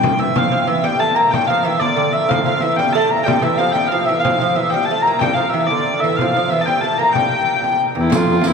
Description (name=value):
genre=medieval dance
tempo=124 BPM (dotted quarters)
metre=6/8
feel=straight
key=G dorian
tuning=A4 = 440 Hz
part: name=warm hurdy-gurdy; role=melody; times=0.0-8.5 s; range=E4 to Bb5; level=-16 LUFS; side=left 1 dB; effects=none
part: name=dark viola da gamba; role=second line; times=0.0-0.2, 8.0-8.5 s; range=E2 to G3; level=-24 LUFS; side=left 2 dB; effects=none
part: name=lute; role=second line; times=0.0-8.5 s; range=E2 to Bb3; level=-21 LUFS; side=right 4 dB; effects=none
part: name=frame drum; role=percussion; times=0.0-8.5 s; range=none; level=-23 LUFS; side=left 2 dB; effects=none
part: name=riq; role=percussion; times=8.1-8.5 s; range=none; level=-21 LUFS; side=right 4 dB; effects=none
room=wet cathedral reverb, RT60 6.2 s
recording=small room ambience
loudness=-14 LUFS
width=side -5 dB against mid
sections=0.4-8.1 A section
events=none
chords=none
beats=| 0.36 0.84 | 1.33 1.82 | 2.30 2.79 | 3.27 3.76 | 4.24 4.73 | 5.21 5.70 | 6.18 6.67 | 7.15 7.63 | 8.12